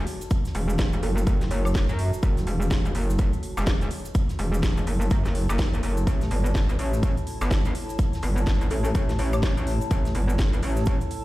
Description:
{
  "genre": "bass house",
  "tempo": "125 BPM",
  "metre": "4/4",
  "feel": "swing 60% on 16ths",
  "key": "F# phrygian",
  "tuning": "A4 = 440 Hz",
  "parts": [
    { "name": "metallic wobble bass", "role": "bass", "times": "0.0-11.0 s", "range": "E1 to F#2", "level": "-24 LUFS", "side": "equal", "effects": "chorus, overdrive, sidechain pumping" },
    { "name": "warbly tape-like pad", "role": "texture", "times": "0.0-11.2 s", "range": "E4 to A5", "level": "-35 LUFS", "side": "equal", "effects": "chorus, built-in reverb, sidechain pumping" },
    { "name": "garage drum kit", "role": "drums", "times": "0.1-11.2 s", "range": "hi-hat, snare drum, woodblock", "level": "-34 LUFS", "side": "equal", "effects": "none" },
    { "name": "soft-mallet drum kit", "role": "drums", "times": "0.1-11.2 s", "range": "hi-hat, snare drum", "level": "-47 LUFS", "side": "right 2 dB", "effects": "none" },
    { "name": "cabasa", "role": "percussion", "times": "0.2-11.1 s", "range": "none", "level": "-46 LUFS", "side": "right 3 dB", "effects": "none" },
    { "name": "electronic kick drum", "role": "drums", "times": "0.3-11.0 s", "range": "none", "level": "-23 LUFS", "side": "equal", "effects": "none" },
    { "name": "bell-like FM electric piano", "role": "melody", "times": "1.0-1.7, 8.7-9.4 s", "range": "A4 to C#5", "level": "-34 LUFS", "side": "equal", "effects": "chorus, cassette tape, ping-pong delay" }
  ],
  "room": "little or no reverb",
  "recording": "played on a big sound system in a bare room, large studio reverb",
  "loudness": "-22 LUFS",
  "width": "side -17 dB against mid",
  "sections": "0.0-11.2 A section",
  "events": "none",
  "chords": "0.0 F#m; 6.1 A"
}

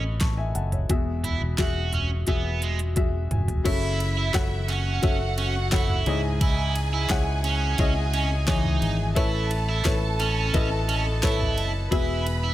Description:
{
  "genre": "piano-driven pop",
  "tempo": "87 BPM",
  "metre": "4/4",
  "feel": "straight",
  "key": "unclear",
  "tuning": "A4 = 439 Hz",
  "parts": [
    { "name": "warm upright piano", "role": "accompaniment", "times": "0.0-12.5 s", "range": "G#2 to C#6", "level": "-29 LUFS", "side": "left 4 dB", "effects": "plate reverb" },
    { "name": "biting overdriven guitar", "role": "riff", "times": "0.0-12.5 s", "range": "G#3 to F#4", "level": "-30 LUFS", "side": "right 6 dB", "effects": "spring reverb" },
    { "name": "fingered electric bass", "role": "bass", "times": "0.0-12.5 s", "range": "E1 to C#2", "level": "-26 LUFS", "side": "equal", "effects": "none" },
    { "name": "pop drum kit", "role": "drums", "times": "0.2-12.4 s", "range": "crash cymbal, hi-hat, kick drum, ride cymbal, snare drum, toms", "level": "-27 LUFS", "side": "equal", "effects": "none" },
    { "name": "warm studio violin section", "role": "second line", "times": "3.7-12.5 s", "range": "E4 to B5", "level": "-31 LUFS", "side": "right 2 dB", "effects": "plate reverb" },
    { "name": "group handclap", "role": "percussion", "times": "4.3-11.4 s", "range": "none", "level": "-39 LUFS", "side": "left 8 dB", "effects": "none" }
  ],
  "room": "light reverb",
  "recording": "none",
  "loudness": "-22 LUFS",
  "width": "side -14 dB against mid",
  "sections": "0.0-3.7 A section; 3.7-12.5 B section",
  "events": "upright piano fill 2.6-3.7; drum fill 3.0-3.7",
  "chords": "0.0 Aadd9; 0.9 Eadd9; 3.7 F#m7; 6.1 C#madd9; 9.2 Aadd9; 11.9 Eadd9"
}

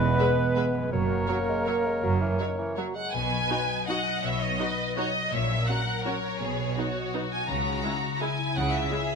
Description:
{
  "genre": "classical",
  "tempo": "165 BPM",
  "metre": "3/4",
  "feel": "uneven beats, rubato",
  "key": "B major",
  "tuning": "A4 = 441 Hz",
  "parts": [
    { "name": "bright clarinet", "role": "second line", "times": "0.0-2.9 s", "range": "B4 to C#5", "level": "-34 LUFS", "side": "left 2 dB", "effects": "none" },
    { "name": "mellow concert flute", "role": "second line", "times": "0.0-2.9 s", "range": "A#4 to B4", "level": "-33 LUFS", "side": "left 1 dB", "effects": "none" },
    { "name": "warm oboe", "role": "second line", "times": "0.0-2.9 s", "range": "A#4 to B4", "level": "-34 LUFS", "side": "right 2 dB", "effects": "none" },
    { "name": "mellow bassoon", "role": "accompaniment", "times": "0.0-3.1 s", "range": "D#3 to A#3", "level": "-33 LUFS", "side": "right 3 dB", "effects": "none" },
    { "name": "dark French horn section", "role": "sustained chords", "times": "0.0-9.0 s", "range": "F#3 to E4", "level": "-33 LUFS", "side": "left 1 dB", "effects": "none" },
    { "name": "concert harp", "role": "arpeggios", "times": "0.0-9.2 s", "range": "E2 to E5", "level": "-34 LUFS", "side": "left 10 dB", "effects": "none" },
    { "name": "clear studio double bass section", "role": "bass", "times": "0.0-8.8 s", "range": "E1 to C#2", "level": "-32 LUFS", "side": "right 4 dB", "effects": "none" },
    { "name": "rich studio cello section", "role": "bass", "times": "0.0-8.8 s", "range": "E2 to C#3", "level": "-32 LUFS", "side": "right 3 dB", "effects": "none" },
    { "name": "rich studio violin section", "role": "melody", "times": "0.2-9.2 s", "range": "C#5 to A#5", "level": "-31 LUFS", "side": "equal", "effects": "none" },
    { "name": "rich studio violin section", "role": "second line", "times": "0.2-9.2 s", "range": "E4 to D#5", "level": "-34 LUFS", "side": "left 1 dB", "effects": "none" },
    { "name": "rich studio viola section", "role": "accompaniment", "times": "0.2-9.0 s", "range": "F#3 to F#4", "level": "-36 LUFS", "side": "right 2 dB", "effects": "none" }
  ],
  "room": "moderate scoring stage reverb, RT60 2.1 s",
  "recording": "close, detailed microphones",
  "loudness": "-25 LUFS",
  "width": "side -5 dB against mid",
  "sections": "0.0-3.1 A section; 3.1-9.2 B section",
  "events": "none",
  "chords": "0.0 E; 0.9 F#; 3.1 B; 5.3 F#7/A#; 6.4 B; 7.5 C#m"
}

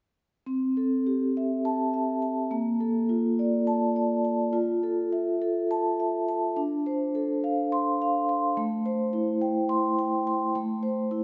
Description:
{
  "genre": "classical, contemporary piece for solo vibraphone",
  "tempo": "208 BPM (eighths)",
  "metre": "7/8",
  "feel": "rubato",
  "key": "C major",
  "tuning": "A4 = 440 Hz",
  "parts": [
    { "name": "vibraphone with soft mallets", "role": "solo", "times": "0.5-11.2 s", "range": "A3 to C6", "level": "-27 LUFS", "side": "equal", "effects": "none" }
  ],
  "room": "wet church reverb, RT60 2.6 s",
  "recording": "heard from further back in the room, nothing above 7.6 kHz",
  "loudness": "-27 LUFS",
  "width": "mono",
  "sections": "0.5-11.2 A section",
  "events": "none",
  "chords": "0.5 C6; 2.5 Bbmaj7; 4.5 Fmaj7; 6.6 Dm7; 8.6 Am7; 10.6 C/A"
}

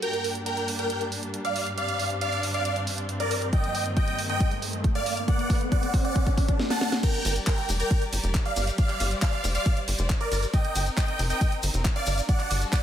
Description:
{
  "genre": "uplifting trance",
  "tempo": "137 BPM",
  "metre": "4/4",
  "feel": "straight",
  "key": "G minor",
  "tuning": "A4 = 437 Hz",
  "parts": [
    { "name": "big supersaw lead", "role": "melody", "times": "0.0-12.8 s", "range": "Bb4 to A5", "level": "-29 LUFS", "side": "right 1 dB", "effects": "phaser, sidechain pumping, dub echo" },
    { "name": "clear symphonic string section", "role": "sustained chords", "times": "0.0-12.8 s", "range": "G2 to D5", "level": "-34 LUFS", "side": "equal", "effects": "sidechain pumping" },
    { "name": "house drum kit", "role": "drums", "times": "0.0-12.8 s", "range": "crash cymbal, handclaps, hi-hat, ride cymbal, snare drum", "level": "-32 LUFS", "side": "right 1 dB", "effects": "sidechain pumping on hats, sidechain pumping on cymbals" },
    { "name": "swell and riser", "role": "sound effects", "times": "0.0-6.6 s", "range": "none", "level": "-36 LUFS", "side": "equal", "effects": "none" },
    { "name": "electronic kick drum", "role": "drums", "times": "3.5-12.8 s", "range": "none", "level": "-24 LUFS", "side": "equal", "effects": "none" },
    { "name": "maracas", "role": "percussion", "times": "7.0-12.8 s", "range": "none", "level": "-37 LUFS", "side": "left 4 dB", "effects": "none" },
    { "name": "tight sequencer bass", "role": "bass", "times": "7.3-12.6 s", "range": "F1 to G1", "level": "-27 LUFS", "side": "equal", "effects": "sidechain pumping" }
  ],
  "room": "light reverb",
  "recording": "none",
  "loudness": "-23 LUFS",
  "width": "side -10 dB against mid",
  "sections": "0.0-7.0 A section; 7.0-12.8 B section",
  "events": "build-up 0.0-7.0; riser 0.0-6.6; drum fill 3.5-6.6, 6.6-7.0; drop 7.0-12.8",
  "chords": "0.0 Gm; 1.8 Bb6/G; 3.5 Cm7/G; 5.3 D/G; 7.0 Gm; 8.8 Bb6; 10.5 Cm7; 12.3 D/G"
}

